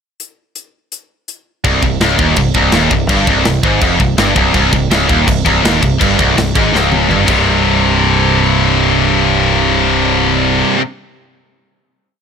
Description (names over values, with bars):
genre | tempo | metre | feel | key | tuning
heavy metal | 165 BPM | 4/4 | straight | C phrygian | A4 = 439 Hz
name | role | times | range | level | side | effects
tight metal drum kit | drums | 0.2-7.4 s | crash cymbal, hi-hat, kick drum, snare drum, toms | -17 LUFS | equal | none
heavy high-gain guitar | riff | 1.6-10.8 s | C2 to C3 | -14 LUFS | left 13 dB | distortion
scooped high-gain guitar | riff | 1.6-10.8 s | C2 to C3 | -15 LUFS | right 11 dB | distortion
growling picked electric bass | bass | 1.6-10.6 s | C1 to Ab1 | -18 LUFS | equal | overdrive
room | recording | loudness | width
small room ambience | none | -10 LUFS | side -6 dB against mid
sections
0.2-1.6 pickup bar; 1.6-7.5 riff; 7.5-10.4 final hit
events
drum fill 6.7-7.5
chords
0.2 N.C.; 1.6 Cm; 7.3 C5